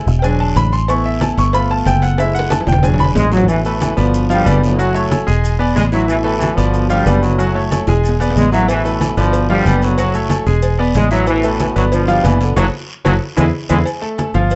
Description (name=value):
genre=latin, salsa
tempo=185 BPM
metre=4/4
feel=straight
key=A major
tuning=A4 = 439 Hz
part: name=bright grand piano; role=accompaniment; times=0.0-14.6 s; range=E3 to C#6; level=-20 LUFS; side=equal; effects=none
part: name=fingered electric bass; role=bass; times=0.0-14.6 s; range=E1 to E2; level=-19 LUFS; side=equal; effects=none
part: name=congas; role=percussion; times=0.1-14.6 s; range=none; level=-24 LUFS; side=equal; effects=none
part: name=guiro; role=percussion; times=0.1-13.8 s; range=none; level=-38 LUFS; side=equal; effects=none
part: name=maracas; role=percussion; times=0.1-14.6 s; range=none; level=-41 LUFS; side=equal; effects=none
part: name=agogo bells and timbales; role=percussion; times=0.2-14.6 s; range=none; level=-29 LUFS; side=equal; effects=none
part: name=cowbell and bongos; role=percussion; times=0.2-3.5, 8.7-14.6 s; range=none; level=-28 LUFS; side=equal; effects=none
part: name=bright trombone section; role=melody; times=3.2-13.8 s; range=A2 to G#3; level=-20 LUFS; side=equal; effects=none
room=moderate studio reverb, RT60 0.7 s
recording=dark, warm production, nothing above 8.0 kHz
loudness=-15 LUFS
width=mono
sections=0.0-3.5 A section; 3.5-13.9 B section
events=grand piano solo 0.0-3.5; drum fill 2.2-3.5, 7.9-8.7, 12.6-13.9; band accent 12.6-13.9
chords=0.2 E7; 0.9 Asus2; 1.5 G7; 2.2 F#m7; 2.8 E7; 3.5 Asus2; 4.1 G7; 4.8 F#m7; 5.4 E7; 6.1 Asus2; 6.7 G7; 7.4 F#m7; 8.0 E7; 8.7 Asus2; 9.3 G7; 10.0 F#m7; 10.6 E7; 11.3 Asus2; 11.9 G7; 12.6 F#m; 13.2 E7; 13.9 Fadd9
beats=0.24 0.56 | 0.89 1.22 1.54 1.87 | 2.19 2.52 2.84 3.17 | 3.49 3.82 4.14 4.47 | 4.79 5.12 5.44 5.76 | 6.09 6.41 6.74 7.06 | 7.39 7.71 8.04 8.36 | 8.68 9.01 9.33 9.65 | 9.98 10.30 10.63 10.95 | 11.27 11.60 11.92 12.24 | 12.57 12.89 13.21 13.54 | 13.86 14.19 14.51